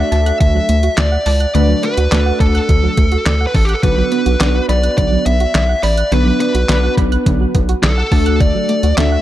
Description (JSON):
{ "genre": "synth-pop", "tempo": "105 BPM", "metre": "4/4", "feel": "straight", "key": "B minor", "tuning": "A4 = 440 Hz", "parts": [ { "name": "smooth overdriven lead guitar", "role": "melody", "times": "0.0-9.2 s", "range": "G4 to E5", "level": "-18 LUFS", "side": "equal", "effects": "dub echo" }, { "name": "warm analog keys", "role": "accompaniment", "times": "0.0-9.2 s", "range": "A3 to B4", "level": "-20 LUFS", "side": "left 1 dB", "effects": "chorus, dub echo" }, { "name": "soft round pluck", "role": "arpeggios", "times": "0.0-9.2 s", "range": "D3 to F#6", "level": "-23 LUFS", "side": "right 5 dB", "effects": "chorus, dub echo" }, { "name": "round analog bass", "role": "bass", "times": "0.0-9.2 s", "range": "A1 to D2", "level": "-15 LUFS", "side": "equal", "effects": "none" }, { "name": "detuned 8-bit digital drum machine", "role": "drums", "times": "0.1-9.1 s", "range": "handclaps, hi-hat, kick drum, snare drum", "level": "-17 LUFS", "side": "equal", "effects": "dub echo" } ], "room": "light reverb", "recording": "echo-heavy mix", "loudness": "-12 LUFS", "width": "side -13 dB against mid", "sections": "0.0-9.2 A section", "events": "none", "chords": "0.0 D; 3.8 Bm; 8.1 D" }